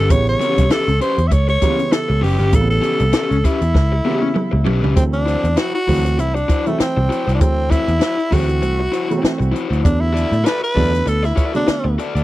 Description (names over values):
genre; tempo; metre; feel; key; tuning
funk; 98 BPM; 4/4; swing 56% on 16ths; unclear; A4 = 440 Hz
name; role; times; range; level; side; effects
raspy tenor saxophone; melody; 0.0-12.0 s; A3 to E5; -20 LUFS; equal; tape echo
raw garage guitar; accompaniment; 0.0-12.2 s; C#4 to D5; -23 LUFS; left 5 dB; overdrive
vintage muted picked electric bass; bass; 0.0-12.2 s; F#1 to A2; -18 LUFS; equal; none
dark upright piano; stabs; 0.1-12.0 s; C#3 to C4; -23 LUFS; right 3 dB; none
compact cocktail drum kit; drums; 0.1-12.2 s; hi-hat, kick drum, snare drum, toms; -18 LUFS; equal; none
room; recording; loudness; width
little or no reverb; dry, close 1970s-style studio recording; -14 LUFS; side -16 dB against mid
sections
0.0-5.0 A section; 5.0-12.2 B section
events
drum fill 3.8-5.0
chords
0.0 A9; 5.0 D9; 9.9 E9sus4